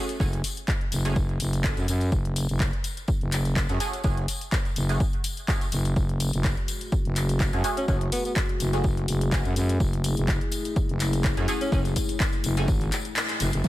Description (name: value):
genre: bass house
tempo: 125 BPM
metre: 4/4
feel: swing 54% on 16ths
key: F# minor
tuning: A4 = 435 Hz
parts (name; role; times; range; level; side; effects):
- band-passed chord stab; stabs; 0.0-12.7 s; A3 to G#4; -34 LUFS; right 2 dB; phaser, ensemble chorus, vintage 12-bit sampler grit, sidechain pumping, dub echo
- house drum kit; drums; 0.1-13.7 s; handclaps, hi-hat; -32 LUFS; left 1 dB; none
- tambourine; percussion; 0.1-13.7 s; none; -38 LUFS; left 5 dB; none
- growling FM bass; bass; 0.2-13.6 s; F#1 to F#2; -25 LUFS; equal; overdrive, sidechain pumping
- electronic kick drum; drums; 0.2-12.8 s; none; -27 LUFS; equal; none
- dark analog pad; sustained chords; 6.0-13.7 s; F#3 to A4; -33 LUFS; left 3 dB; chorus, sidechain pumping
- clear alto saxophone; melody; 7.8-8.3, 11.6-11.8 s; B3 to C#4; -32 LUFS; equal; dub echo
- impact; sound effects; 13.6-13.7 s; none; -21 LUFS; right 1 dB; none
room: little or no reverb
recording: none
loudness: -23 LUFS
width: side -16 dB against mid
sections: 0.0-13.6 A section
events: kick drops out 13.2-13.6; band accent 13.2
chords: 0.0 F#madd9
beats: | 0.20 0.68 1.16 1.64 | 2.12 2.60 3.08 3.56 | 4.04 4.52 5.00 5.48 | 5.96 6.44 6.92 7.40 | 7.88 8.36 8.84 9.32 | 9.80 10.28 10.76 11.24 | 11.72 12.20 12.68 13.16 | 13.64